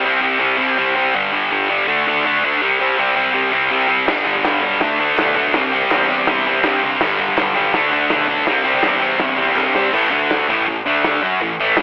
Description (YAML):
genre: garage rock duo or trio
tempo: 164 BPM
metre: 4/4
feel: straight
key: unclear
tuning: A4 = 441 Hz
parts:
  - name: thick fuzz guitar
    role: riff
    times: 0.0-11.8 s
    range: G2 to F#4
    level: -14 LUFS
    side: equal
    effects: distortion
  - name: growling picked electric bass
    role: bass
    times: 4.1-11.8 s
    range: G1 to G2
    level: -25 LUFS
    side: equal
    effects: overdrive
  - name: vintage drum kit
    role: drums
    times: 4.1-11.8 s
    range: crash cymbal, hi-hat, kick drum, snare drum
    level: -22 LUFS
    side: equal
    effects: none
  - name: group handclap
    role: percussion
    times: 4.5-9.7 s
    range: none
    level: -27 LUFS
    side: equal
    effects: none
room: light reverb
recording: telephone sound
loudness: -13 LUFS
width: side -23 dB against mid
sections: 0.0-9.9 A section; 9.9-11.8 B section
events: drum fill 9.6-9.9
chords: 0.0 C5; 1.1 G5; 1.9 D5; 2.6 C5; 4.1 G; 4.8 D5; 5.5 C; 7.0 G; 7.7 D5; 8.5 C; 9.9 A5; 10.1 D5; 10.5 A5; 10.8 D5; 11.2 A